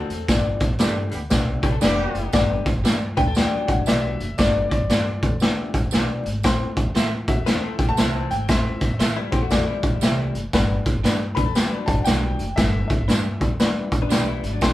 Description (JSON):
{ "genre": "uptempo 1960s-style soul", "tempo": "117 BPM", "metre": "4/4", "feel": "swing 63% on 8ths", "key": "G major", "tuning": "A4 = 443 Hz", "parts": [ { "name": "barky reed electric piano", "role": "accompaniment", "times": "0.0-14.7 s", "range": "G3 to E5", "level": "-28 LUFS", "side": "left 3 dB", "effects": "overdrive, fast tremolo" }, { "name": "direct-recorded clean electric guitar", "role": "riff", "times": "0.0-4.3, 7.5-14.7 s", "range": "E3 to B4", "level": "-30 LUFS", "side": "left 6 dB", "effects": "none" }, { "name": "upright bass", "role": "bass", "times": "0.0-14.7 s", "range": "F1 to A2", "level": "-28 LUFS", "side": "equal", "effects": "none" }, { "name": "raw garage drum kit", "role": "drums", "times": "0.1-14.7 s", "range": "hi-hat, kick drum, snare drum", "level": "-21 LUFS", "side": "equal", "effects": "none" }, { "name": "tambourine", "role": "percussion", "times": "0.3-14.7 s", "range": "none", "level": "-36 LUFS", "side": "right 8 dB", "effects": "none" }, { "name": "warm horn section", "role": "second line", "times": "0.8-2.3 s", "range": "G3 to G4", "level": "-28 LUFS", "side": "right 1 dB", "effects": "none" }, { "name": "electric guitar at the edge of break-up", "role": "stabs", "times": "0.8-14.3 s", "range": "D4 to E5", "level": "-31 LUFS", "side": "right 5 dB", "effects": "none" }, { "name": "warm concert grand piano", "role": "melody", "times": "3.2-13.9 s", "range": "D5 to B5", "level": "-28 LUFS", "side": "left 1 dB", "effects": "none" } ], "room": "moderate studio ambience, RT60 0.5 s", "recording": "band playing live in one room, vinyl crackle", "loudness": "-19 LUFS", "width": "side -15 dB against mid", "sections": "0.0-2.3 A section; 2.3-14.7 B section", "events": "band accent 0.3-2.3", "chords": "0.3 G; 6.4 Am; 10.5 G" }